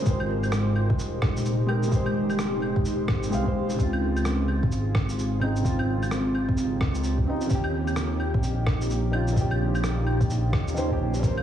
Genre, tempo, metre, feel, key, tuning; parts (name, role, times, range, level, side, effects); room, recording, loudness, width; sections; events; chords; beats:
future garage; 129 BPM; 4/4; swing 62% on 16ths; A4 = 440 Hz
felt-muted upright piano; accompaniment; 0.0-11.4 s; Db3 to F5; -29 LUFS; equal; sidechain pumping, low-pass filter, tape echo
ethereal airy pad; sustained chords; 0.0-11.4 s; C3 to C5; -30 LUFS; equal; ensemble chorus, built-in reverb, sidechain pumping
dark detuned saw bass; bass; 0.1-11.4 s; Eb1 to Eb2; -27 LUFS; equal; sidechain pumping
electronic kick drum; drums; 0.1-11.3 s; -25 LUFS; equal
electronic shaker, claves and rim click; drums; 0.1-11.4 s; -34 LUFS; right 1 dB
flickering grainy texture; texture; 11.4 s; F5; -48 LUFS; right 8 dB
light reverb, digital ambience; heavily compressed radio sound, vinyl crackle, studio ambience; -22 LUFS; side -10 dB against mid
0.0-11.4 A section
0.1 Abmaj7; 3.8 Dbmaj7; 7.5 Eb7
| 0.06 0.53 0.99 1.46 | 1.93 2.39 2.85 3.32 | 3.79 4.25 4.71 5.18 | 5.64 6.11 6.58 7.04 | 7.51 7.97 8.44 8.90 | 9.37 9.83 10.30 10.76 | 11.23